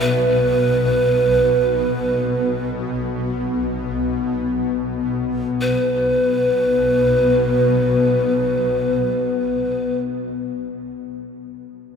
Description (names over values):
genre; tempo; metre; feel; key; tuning
world meditative, free-time meditation music; free time; none; none; unclear; A4 = 443 Hz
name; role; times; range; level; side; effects
breathy pan flute; melody; 0.0-10.0 s; B4; -18 LUFS; right 1 dB; diffuse ambient delay
shimmering ambient pad; drone; 0.0-10.0 s; B1 to B2; -23 LUFS; left 1 dB; chorus, built-in reverb
glass harmonica; texture; 3.0-10.0 s; B3; -24 LUFS; left 6 dB; none
room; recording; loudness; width
wet cathedral reverb, RT60 4.5 s; none; -17 LUFS; side -6 dB against mid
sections
0.0-5.6 A section; 5.6-9.2 B section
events
none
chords
none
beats
free time